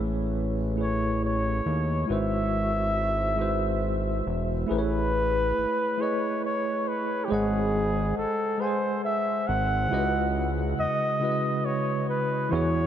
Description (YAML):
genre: slow six-eight R&B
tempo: 46 BPM (dotted quarters)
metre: 6/8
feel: straight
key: unclear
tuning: A4 = 440 Hz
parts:
  - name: tine electric piano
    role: accompaniment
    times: 0.0-12.9 s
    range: C#3 to G#5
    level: -28 LUFS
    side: equal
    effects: medium stereo tremolo
  - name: fat analog bass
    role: bass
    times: 0.0-12.9 s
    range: E1 to E2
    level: -28 LUFS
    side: equal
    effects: none
  - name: breathy flugelhorn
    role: melody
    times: 0.8-12.9 s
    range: G4 to F#5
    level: -28 LUFS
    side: equal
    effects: ping-pong delay
room: moderate huge ambient reverb, RT60 5.1 s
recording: dreamy mix soaked in reverb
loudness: -24 LUFS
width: side -10 dB against mid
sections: 0.0-4.7 A section; 4.7-12.9 B section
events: none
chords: 0.0 Amaj7; 2.1 G#7alt; 4.7 Amaj9; 7.3 G#7; 9.9 C#m11